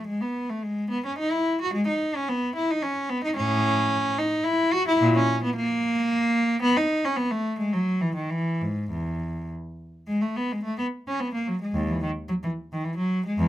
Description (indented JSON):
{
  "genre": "classical, baroque-style suite movement for unaccompanied cello",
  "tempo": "100-113 BPM",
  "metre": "3/4",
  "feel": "rubato",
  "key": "E major",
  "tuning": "A4 = 440 Hz",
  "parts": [
    { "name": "rich cello", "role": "solo", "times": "0.0-13.5 s", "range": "D#2 to F#4", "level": "-23 LUFS", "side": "equal", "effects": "none" }
  ],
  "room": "light reverb",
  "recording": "none",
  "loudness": "-23 LUFS",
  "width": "side -13 dB against mid",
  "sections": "0.0-10.1 A section; 10.1-13.5 A section",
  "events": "none",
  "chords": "none"
}